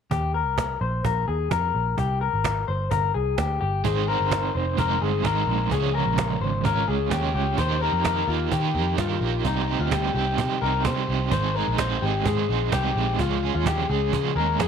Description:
jangly indie pop; 128 BPM; 4/4; straight; Eb major; A4 = 440 Hz
electric guitar through a small old amp; arpeggios; 0.1-14.7 s; Eb4 to C5; -26 LUFS; left 10 dB; slapback echo
vintage muted picked electric bass; bass; 0.1-14.7 s; F1 to Eb3; -26 LUFS; right 1 dB
cajon; drums; 0.1-14.7 s; -30 LUFS; right 6 dB
crunchy overdriven guitar; accompaniment; 3.8-14.7 s; Ab2 to Db5; -27 LUFS; right 13 dB; tremolo
light reverb; 1960s-style stereo with parts hard left and right; -21 LUFS; side -7 dB against mid
0.1-7.6 A section; 7.6-14.7 B section
0.1 Eb; 2.0 C5; 3.8 Ab; 5.7 Db; 7.6 Eb; 9.4 Cm; 11.3 Ab; 13.2 Db
| 0.11 0.58 1.05 1.51 | 1.98 2.45 2.92 3.38 | 3.85 4.32 4.78 5.25 | 5.71 6.18 6.65 7.12 | 7.58 8.05 8.52 8.98 | 9.45 9.92 10.38 10.85 | 11.32 11.79 12.26 12.72 | 13.19 13.66 14.13 14.60

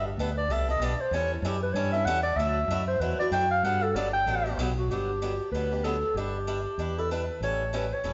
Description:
acoustic string swing (jazz manouche); 191 BPM; 4/4; swing 59% on 8ths; G major; A4 = 441 Hz
mellow clarinet; melody; 0.0-8.1 s; E4 to G5; -30 LUFS; equal
picked swing-style acoustic guitar; accompaniment; 0.0-8.1 s; D3 to B4; -36 LUFS; equal
fingered electric bass; bass; 0.0-8.1 s; E1 to G2; -34 LUFS; equal
wet stone room reverb, RT60 1.3 s; band playing live in one room, nothing above 7.8 kHz; -28 LUFS; mono
0.0-4.9 A section; 4.9-8.1 B section
clarinet solo 0.0-4.9
0.0 Gadd9; 1.1 A7; 2.4 Dadd9; 3.6 Gmaj7; 6.2 Em7/G; 7.4 A7
0.18 0.49 0.81 | 1.12 1.44 1.75 2.06 | 2.38 2.69 3.01 3.32 | 3.64 3.95 4.27 4.58 | 4.89 5.21 5.53 5.84 | 6.16 6.47 6.79 7.10 | 7.42 7.73 8.05

